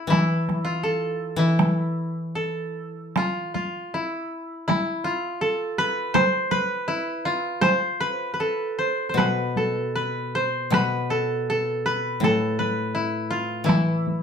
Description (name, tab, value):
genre	japanese traditional, Japanese chamber music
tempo	75-85 BPM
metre	2/4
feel	rubato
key	E miyako bushi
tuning	A4 = 440 Hz
part	koto	melody	0.0-14.2 s	E4 to C5	-24 LUFS	equal	none
part	koto	accompaniment	0.1-3.7, 9.1-14.2 s	A2 to E3	-25 LUFS	left 2 dB	none
part	taiko ensemble	percussion	0.1-14.2 s	none	-24 LUFS	right 1 dB	none
room	wet studio reverb, RT60 0.7 s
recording	heard from further back in the room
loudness	-22 LUFS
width	side -7 dB against mid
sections	0.0-3.2 A section; 3.2-14.2 B section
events	none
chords	none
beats	| 0.11 0.83 | 1.59 2.36 | 3.15 3.94 | 4.68 5.41 | 6.15 6.88 | 7.62 8.40 | 9.18 9.95 | 10.73 11.49 | 12.23 12.95 | 13.67